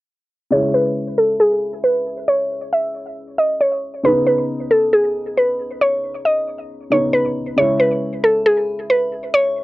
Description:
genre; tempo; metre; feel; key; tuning
hip hop; 136 BPM; 4/4; half-time; C# minor; A4 = 440 Hz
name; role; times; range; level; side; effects
mallet-like synth pluck; melody; 0.5-9.6 s; G#4 to E5; -16 LUFS; equal; chorus, low-pass filter, analog delay
dark concert grand piano; accompaniment; 0.5-9.6 s; C#3 to E4; -25 LUFS; left 1 dB; low-pass filter, cassette tape
room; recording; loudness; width
light reverb; home recording on cassette; -15 LUFS; side -18 dB against mid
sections
0.5-9.6 A section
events
filter sweep 0.5-9.6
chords
0.5 C#m; 4.0 B/C#; 7.6 C#m

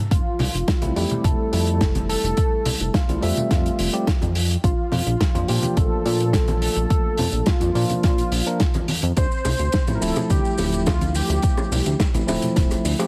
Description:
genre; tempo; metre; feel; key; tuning
nu-disco, nu disco; 106 BPM; 4/4; straight; D minor; A4 = 440 Hz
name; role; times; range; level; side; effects
unison lead; melody; 0.1-12.0 s; F4 to C5; -30 LUFS; equal; cassette tape, digital delay
chorused synth bass; bass; 0.1-12.9 s; D1 to Bb2; -26 LUFS; equal; none
electronic kick drum; drums; 0.1-12.7 s; none; -24 LUFS; equal; none
warm soul drum kit; drums; 0.1-13.1 s; hi-hat, shaker, snare drum; -29 LUFS; equal; none
congas and bongos; percussion; 0.4-13.1 s; none; -32 LUFS; equal; none
tine electric piano; accompaniment; 0.8-13.1 s; F3 to E5; -28 LUFS; equal; sidechain pumping
room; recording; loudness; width
light reverb, small room reverb; heavily compressed radio sound; -21 LUFS; mono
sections
0.0-13.1 A section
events
none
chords
0.1 Fmaj7; 4.6 Bb; 9.2 Dm7

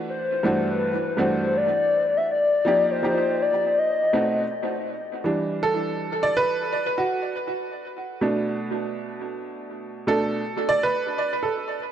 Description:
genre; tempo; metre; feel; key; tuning
hip hop; 81 BPM; 4/4; swing 63% on 16ths; E minor; A4 = 440 Hz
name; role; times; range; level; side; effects
hollow clarinet-like synth lead; melody; 0.1-4.5 s; B4 to E5; -22 LUFS; left 3 dB; chorus, tape echo
bright upright piano; accompaniment; 0.4-11.8 s; G2 to D5; -24 LUFS; right 2 dB; tape echo
room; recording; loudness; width
moderate plate reverb, RT60 3.4 s; echo-heavy mix; -21 LUFS; side -10 dB against mid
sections
0.0-5.3 A section; 5.3-11.9 B section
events
upright piano solo 5.3-11.9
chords
0.1 Gsus2; 2.3 F13sus4; 3.8 B7b9; 5.3 Em7; 8.2 Bm7; 11.2 N.C.

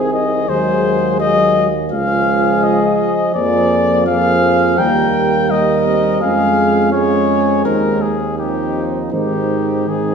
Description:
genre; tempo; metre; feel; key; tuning
classical, brass quintet; 84 BPM; 4/4; straight; Ab major; A4 = 440 Hz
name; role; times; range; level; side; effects
mellow trumpet; melody; 0.0-10.1 s; G4 to G5; -17 LUFS; left 3 dB; none
warm flugelhorn; second line; 0.0-10.1 s; Eb4 to Bb4; -22 LUFS; right 3 dB; none
mellow trombone; accompaniment; 0.0-10.1 s; Eb3 to Ab3; -20 LUFS; right 3 dB; none
warm French horn; accompaniment; 0.0-10.1 s; Ab3 to Db4; -22 LUFS; left 2 dB; none
clear tuba; bass; 0.0-10.1 s; C2 to Ab2; -20 LUFS; right 2 dB; none
room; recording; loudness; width
wet recital hall reverb, RT60 1.4 s; heard from further back in the room; -13 LUFS; side -6 dB against mid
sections
0.0-10.1 A section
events
none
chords
0.5 Ab7/Eb; 1.9 Db; 3.4 Bb7/F; 4.8 Eb; 6.2 Db/F; 7.7 Ab/Eb; 8.4 Eb69; 9.1 Ab

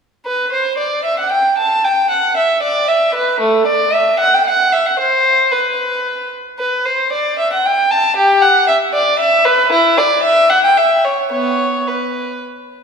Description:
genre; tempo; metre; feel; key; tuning
classical, baroque-style suite movement for unaccompanied violin; 114 BPM; 3/4; rubato; E minor, B minor from 9.7 s; A4 = 442 Hz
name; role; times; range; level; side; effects
dark violin; solo; 0.3-12.4 s; A3 to A5; -12 LUFS; equal; none
room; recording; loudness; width
wet concert hall reverb, RT60 2.2 s; recorded in a church or concert hall; -12 LUFS; side -6 dB against mid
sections
0.3-12.8 A section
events
none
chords
none

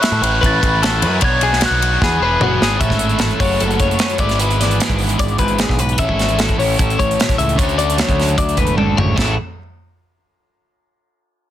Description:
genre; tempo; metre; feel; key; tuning
math rock and midwest emo; 151 BPM; 4/4; straight; A major; A4 = 439 Hz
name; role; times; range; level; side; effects
glockenspiel with rubber mallets; melody; 0.0-2.6 s; B5 to A6; -21 LUFS; right 1 dB; slapback echo
twelve-string electric guitar; arpeggios; 0.0-9.4 s; F#4 to E5; -20 LUFS; left 6 dB; warbly pitch drift
overdriven electric guitar; riff; 0.0-9.3 s; A2 to D5; -22 LUFS; equal; none
modern studio drum kit; drums; 0.0-9.3 s; hi-hat, kick drum, ride cymbal, snare drum, splash cymbal, toms; -19 LUFS; right 1 dB; none
growling picked electric bass; bass; 0.1-9.4 s; E1 to A2; -19 LUFS; equal; overdrive
twelve-string electric guitar; accompaniment; 2.8-9.4 s; F#2 to A4; -23 LUFS; right 5 dB; none
room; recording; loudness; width
light reverb; dense, heavily limited modern master; -13 LUFS; side -11 dB against mid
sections
0.0-2.8 A section; 2.8-9.2 B section; 9.2-10.8 C section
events
drum fill 2.0-2.8, 8.8-9.2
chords
0.0 A; 1.2 Bm; 2.0 E7; 2.8 Amaj7; 3.4 F#m7; 4.2 E7/G#; 6.0 Amaj7; 7.6 Dmaj7; 9.2 A

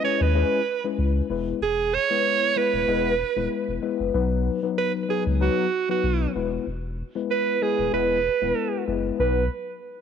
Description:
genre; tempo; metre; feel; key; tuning
afrobeats; 95 BPM; 4/4; swing 55% on 16ths; B major; A4 = 441 Hz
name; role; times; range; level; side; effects
edgy alto saxophone; melody; 0.0-9.5 s; F#4 to C#5; -24 LUFS; right 8 dB; low-pass filter, analog delay
mellow tine electric piano; accompaniment; 0.0-9.4 s; F#3 to B4; -26 LUFS; left 10 dB; ensemble chorus, low-pass filter, cassette tape
warm sub bass; bass; 0.2-9.5 s; D#1 to D#2; -26 LUFS; left 1 dB; none
room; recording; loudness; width
light reverb; home recording on cassette; -21 LUFS; side -7 dB against mid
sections
0.0-4.1 A section; 4.1-9.2 B section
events
none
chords
0.0 C#m7; 1.3 E; 4.1 B; 6.4 E; 9.2 B

